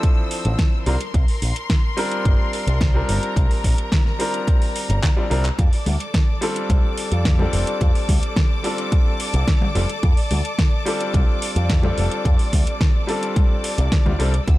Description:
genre	nu-disco, nu disco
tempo	108 BPM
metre	4/4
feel	straight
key	F major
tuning	A4 = 440 Hz
part	bright grand piano	accompaniment	0.0-14.3 s	F3 to D5	-26 LUFS	left 1 dB	sidechain pumping, dub echo
part	clear studio string section	sustained chords	0.0-14.6 s	A4 to E6	-30 LUFS	left 2 dB	sidechain pumping
part	electronic kick drum	drums	0.0-14.6 s	none	-18 LUFS	equal	none
part	pop drum kit	drums	0.0-14.6 s	handclaps, hi-hat, snare drum	-27 LUFS	equal	none
part	picked electric bass with an envelope filter	bass	0.5-14.6 s	F1 to F2	-20 LUFS	equal	none
part	congas	percussion	5.9-14.2 s	none	-31 LUFS	left 2 dB	none
room	studio ambience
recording	dark, warm production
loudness	-17 LUFS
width	side -17 dB against mid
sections	0.0-14.6 A section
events	drum fill 5.0-5.6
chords	0.0 Dm9; 0.9 C7sus4; 5.6 F6

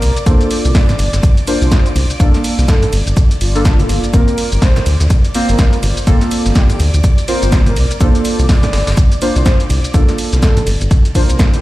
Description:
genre	deep house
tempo	124 BPM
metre	4/4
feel	swing 59% on 16ths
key	G minor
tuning	A4 = 441 Hz
part	breathy flute-like synth lead	melody	0.0-11.6 s	F4 to D5	-25 LUFS	right 1 dB	ensemble chorus, digital delay
part	round analog bass	bass	0.0-11.4 s	G1 to D2	-14 LUFS	equal	sidechain pumping
part	breakbeat sampler-style drum kit	drums	0.0-11.5 s	hi-hat, shaker, snare drum	-29 LUFS	equal	sidechain pumping on perc, high-pass filter on perc, high-pass filter on snare, sidechain pumping on hats, high-pass filter on hats, high-pass filter on room
part	punchy analog drum machine	drums	0.0-11.6 s	hi-hat, ride cymbal, shaker, snare drum	-22 LUFS	equal	none
part	string machine, violins	texture	0.0-11.6 s	D5 to D6	-29 LUFS	left 1 dB	ensemble chorus, sidechain pumping
part	deep mellow chord stab	stabs	0.3-11.6 s	Bb3 to C5	-19 LUFS	equal	chorus, sidechain pumping, digital delay
part	electronic kick drum	drums	0.3-11.5 s	none	-11 LUFS	equal	overdrive
part	congas	percussion	0.9-11.6 s	none	-21 LUFS	right 1 dB	none
room	digital ambience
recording	played on a big sound system in a bare room, large studio reverb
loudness	-10 LUFS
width	side -17 dB against mid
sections	0.0-11.6 A section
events	none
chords	0.0 Gm11

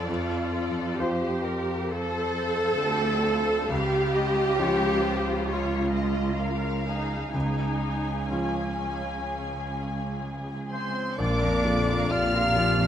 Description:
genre	cinematic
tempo	62-67 BPM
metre	4/4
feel	rubato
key	unclear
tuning	A4 = 436 Hz
part	rich symphonic violin section	second line	0.0-12.9 s	F4 to Ab5	-34 LUFS	left 3 dB	none
part	clear baby grand piano	accompaniment	0.0-12.9 s	Bb1 to F5	-31 LUFS	left 1 dB	none
part	rich symphonic viola section	accompaniment	0.0-12.9 s	C4 to A4	-29 LUFS	equal	none
part	clear symphonic cello section	bass	0.0-12.9 s	Db2 to Bb2	-31 LUFS	right 2 dB	none
part	rich studio violin section	melody	10.7-12.9 s	C6 to F6	-31 LUFS	left 1 dB	none
part	clear oboe	second line	10.7-12.9 s	C5 to F5	-30 LUFS	equal	none
part	silver concert flute	second line	10.7-12.9 s	C5 to F5	-32 LUFS	left 1 dB	none
part	warm clarinet	second line	10.7-12.9 s	C4 to F4	-36 LUFS	left 2 dB	none
part	dark French horn section	sustained chords	11.2-12.9 s	G4 to Bb4	-32 LUFS	left 3 dB	none
part	rich symphonic double bass section	bass	11.2-12.9 s	Bb1	-30 LUFS	right 2 dB	none
room	moderate scoring stage reverb, RT60 1.9 s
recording	none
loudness	-24 LUFS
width	side -9 dB against mid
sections	0.0-11.2 A section; 11.2-12.9 A section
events	none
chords	0.0 F; 3.7 Db; 11.2 Bb

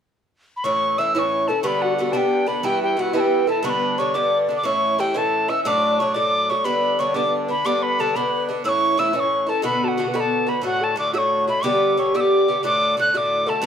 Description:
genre	celtic folk, Celtic slide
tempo	120 BPM (dotted quarters)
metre	12/8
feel	straight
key	unclear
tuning	A4 = 440 Hz
part	mellow wooden whistle	melody	0.6-13.7 s	F#5 to F#6	-21 LUFS	equal	none
part	mellow baroque flute	second line	0.6-13.7 s	F#4 to E5	-24 LUFS	left 3 dB	none
part	Irish bouzouki	accompaniment	0.6-13.7 s	G2 to G4	-22 LUFS	right 1 dB	none
room	moderate studio reverb, RT60 0.5 s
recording	none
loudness	-18 LUFS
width	side -8 dB against mid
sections	0.6-13.7 A section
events	none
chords	0.0 N.C.; 0.6 A; 1.6 G; 2.6 Em/G; 3.6 G; 4.6 A; 5.6 D; 6.7 G; 8.6 A; 9.6 Bm; 10.6 D; 11.6 G; 12.6 D

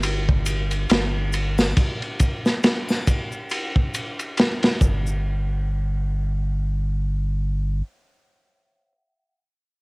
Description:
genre	trip hop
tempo	69 BPM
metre	4/4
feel	swing 58% on 16ths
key	unclear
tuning	A4 = 439 Hz
part	warm sub bass	bass	0.0-7.8 s	G1	-23 LUFS	equal	tube saturation
part	crunchy breakbeat drum kit	drums	0.0-5.0 s	kick drum, ride cymbal, snare drum	-20 LUFS	equal	cassette tape
part	egg shaker and triangle	percussion	0.0-5.2 s	none	-39 LUFS	left 4 dB	none
room	light reverb, small room ambience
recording	home recording on cassette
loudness	-20 LUFS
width	side -32 dB against mid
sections	0.0-5.2 A section; 5.2-8.7 B section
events	none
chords	none

